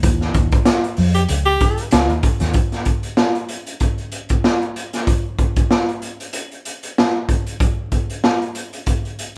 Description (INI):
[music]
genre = funk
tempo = 95 BPM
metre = 4/4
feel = swing 56% on 16ths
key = unclear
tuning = A4 = 443 Hz
[part]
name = vintage muted fingered electric bass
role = bass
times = 0.0-2.5 s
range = Db2 to F2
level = -21 LUFS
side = equal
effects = none
[part]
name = raw garage drum kit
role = drums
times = 0.0-9.4 s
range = hi-hat, kick drum, snare drum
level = -20 LUFS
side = equal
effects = none
[part]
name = warm tenor saxophone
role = second line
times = 1.1-1.8 s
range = G4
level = -21 LUFS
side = equal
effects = none
[sound]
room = moderate large studio reverb, RT60 0.9 s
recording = band playing live in one room, vinyl crackle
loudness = -19 LUFS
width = mono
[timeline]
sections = 0.0-2.6 A section; 2.6-9.4 B section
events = band accent 0.0-2.6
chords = 0.0 Ebsus2; 2.6 N.C.